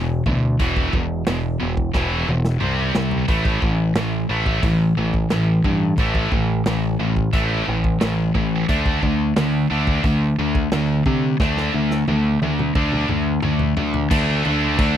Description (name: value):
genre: heavy metal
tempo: 89 BPM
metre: 4/4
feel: straight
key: unclear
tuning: A4 = 440 Hz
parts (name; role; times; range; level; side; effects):
- scooped high-gain guitar; riff; 0.0-15.0 s; E2 to D4; -20 LUFS; equal; distortion
- growling picked electric bass; bass; 0.0-15.0 s; E1 to C3; -22 LUFS; equal; overdrive
- modern studio drum kit; drums; 0.3-14.9 s; crash cymbal, hi-hat, kick drum, snare drum, toms; -23 LUFS; equal; none
room: little or no reverb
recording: dry, close 1970s-style studio recording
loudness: -17 LUFS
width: side -10 dB against mid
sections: 0.0-14.1 A section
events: drum fill 1.9-3.3, 11.4-14.1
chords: 0.0 E5; 2.6 C5; 3.3 A5; 8.7 D5